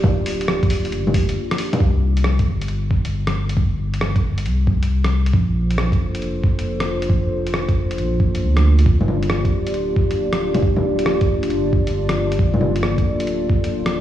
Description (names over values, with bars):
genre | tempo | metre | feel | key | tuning
future garage | 136 BPM | 4/4 | swing 67% on 16ths | G minor | A4 = 440 Hz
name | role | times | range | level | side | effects
warbly tape-like pad | sustained chords | 0.0-1.8, 5.8-14.0 s | Bb3 to D5 | -23 LUFS | left 1 dB | chorus, built-in reverb, sidechain pumping
soft dub sub bass | bass | 0.0-14.0 s | D1 to D2 | -20 LUFS | equal | sidechain pumping
electronic kick drum | drums | 0.0-13.6 s | none | -18 LUFS | equal | none
lo-fi sampler-style drum kit | drums | 0.0-13.9 s | bongos, hi-hat, rim click | -25 LUFS | left 1 dB | none
room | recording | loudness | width
light reverb, digital ambience | played on a big sound system in a bare room, cassette tape, stone room reverb, studio reverb | -17 LUFS | side -12 dB against mid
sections
0.0-1.8 A section; 1.8-14.0 B section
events
break 1.4-1.8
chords
0.0 Gm7; 1.8 C5; 5.3 Bbmaj9; 8.9 Gm7